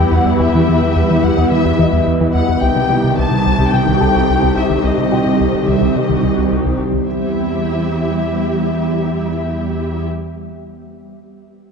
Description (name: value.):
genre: cinematic, hybrid orchestral and electronic film score.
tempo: 108 BPM.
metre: 4/4.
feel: straight.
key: E harmonic minor.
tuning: A4 = 439 Hz.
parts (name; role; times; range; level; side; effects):
warm symphonic violin section; melody; 0.0-10.0 s; Eb5 to A5; -21 LUFS; left 6 dB; none.
warm symphonic viola section; accompaniment; 0.0-10.0 s; Eb3 to G4; -22 LUFS; left 2 dB; none.
ethereal airy pad; sustained chords; 0.0-10.0 s; G3 to E5; -19 LUFS; right 1 dB; ensemble chorus, built-in reverb.
analog pluck; arpeggios; 0.0-7.0 s; C3 to B3; -23 LUFS; left 3 dB; none.
round analog bass; riff; 0.0-7.0 s; C2 to E3; -19 LUFS; equal; none.
rich symphonic cello section; bass; 0.0-10.0 s; C2 to E2; -20 LUFS; right 3 dB; none.
felt-muted upright piano; texture; 0.0-7.1 s; G4 to A5; -27 LUFS; left 2 dB; ping-pong delay.
room: wet concert hall reverb, RT60 2.3 s.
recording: dark, warm production, nothing above 10.4 kHz.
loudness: -13 LUFS.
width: side -5 dB against mid.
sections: 0.0-7.1 A section; 7.1-9.3 B section.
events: none.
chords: 0.0 Em; 2.6 Cm; 7.1 Em.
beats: | 0.39 0.94 1.50 2.05 | 2.61 3.16 3.72 4.27 | 4.83 5.38 5.94 6.50 | 7.05 7.61 8.16 8.72.